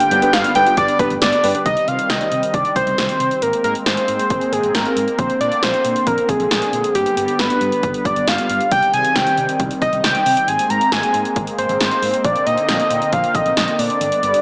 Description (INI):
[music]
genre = synth-pop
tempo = 136 BPM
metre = 4/4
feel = straight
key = C minor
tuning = A4 = 441 Hz
[part]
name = fat analog lead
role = melody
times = 0.0-14.4 s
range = G4 to Bb5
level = -16 LUFS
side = equal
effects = chorus
[part]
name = lush unison pad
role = sustained chords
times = 0.0-14.4 s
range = D3 to C4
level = -24 LUFS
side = equal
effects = chorus, phaser
[part]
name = soft round pluck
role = arpeggios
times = 0.0-1.6 s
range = B3 to G4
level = -26 LUFS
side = equal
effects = none
[part]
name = punchy analog drum machine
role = drums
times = 0.0-14.4 s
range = hi-hat, kick drum, snare drum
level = -21 LUFS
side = equal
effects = gated reverb
[part]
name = warm grand piano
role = accompaniment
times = 0.1-1.7 s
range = B3 to B4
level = -22 LUFS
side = equal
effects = none
[part]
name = mellow fretless electric bass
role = bass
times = 0.1-14.3 s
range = G1 to C3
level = -28 LUFS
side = equal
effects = none
[sound]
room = moderate lush hall reverb, RT60 1.9 s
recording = small speaker sound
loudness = -14 LUFS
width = side -34 dB against mid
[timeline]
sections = 0.0-1.7 A section; 1.7-14.4 B section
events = none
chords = 0.0 G; 1.7 Cm; 3.4 Abadd9; 5.2 Bbadd9; 7.0 G; 8.7 Cm; 10.5 Abadd9; 12.2 Bbadd9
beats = 0.33 0.77 1.22 | 1.66 2.10 2.54 2.98 | 3.42 3.86 4.30 4.75 | 5.19 5.63 6.07 6.51 | 6.95 7.39 7.83 8.27 | 8.72 9.16 9.60 10.04 | 10.48 10.92 11.36 11.80 | 12.24 12.69 13.13 13.57 | 14.01